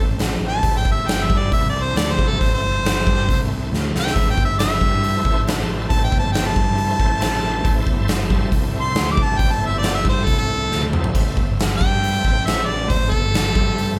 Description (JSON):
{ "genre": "blues rock power trio and southern rock", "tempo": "137 BPM", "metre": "4/4", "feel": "straight", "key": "A minor", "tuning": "A4 = 438 Hz", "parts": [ { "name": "bright harmonica", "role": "melody", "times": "0.0-14.0 s", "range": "A4 to D6", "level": "-24 LUFS", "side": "equal", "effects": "overdrive" }, { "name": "bright tonewheel organ", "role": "sustained chords", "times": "0.0-14.0 s", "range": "C4 to E5", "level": "-33 LUFS", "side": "equal", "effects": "slow rotary speaker, chorus vibrato" }, { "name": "fuzz fingered electric bass", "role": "bass", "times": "0.0-14.0 s", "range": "G1 to G2", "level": "-26 LUFS", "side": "equal", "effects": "overdrive" }, { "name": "huge arena drum kit", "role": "drums", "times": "0.2-13.9 s", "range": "hi-hat, kick drum, snare drum, splash cymbal, toms", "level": "-22 LUFS", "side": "equal", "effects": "none" } ], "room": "light reverb", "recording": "band playing live in one room", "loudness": "-19 LUFS", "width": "mono", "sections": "0.0-14.0 A section", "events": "harmonica solo 0.0-14.0; drum fill 3.7-4.2, 10.7-11.1", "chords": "0.0 Am" }